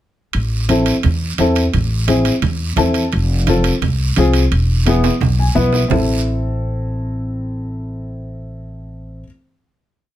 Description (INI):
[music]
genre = latin, cumbia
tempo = 172 BPM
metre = 4/4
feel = straight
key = A harmonic minor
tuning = A4 = 440 Hz
[part]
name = upright bass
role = bass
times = 0.3-9.2 s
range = E1 to E2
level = -18 LUFS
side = equal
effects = none
[part]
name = congas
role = percussion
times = 0.3-6.0 s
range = none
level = -22 LUFS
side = right 4 dB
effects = none
[part]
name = guiro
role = percussion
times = 0.3-6.0 s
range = none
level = -28 LUFS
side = right 5 dB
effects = none
[part]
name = timbales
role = percussion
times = 0.3-6.0 s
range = none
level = -26 LUFS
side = right 10 dB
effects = none
[part]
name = warm upright piano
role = accompaniment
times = 0.7-9.2 s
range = B3 to A5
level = -18 LUFS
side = left 2 dB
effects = none
[sound]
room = light reverb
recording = none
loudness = -14 LUFS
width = side -13 dB against mid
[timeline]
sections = 0.3-5.9 A section; 5.9-8.7 final chord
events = upright piano fill 2.6-3.1, 5.2-5.9; drum fill 5.0-5.9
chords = 0.3 Am; 3.1 F; 4.5 E; 5.9 Am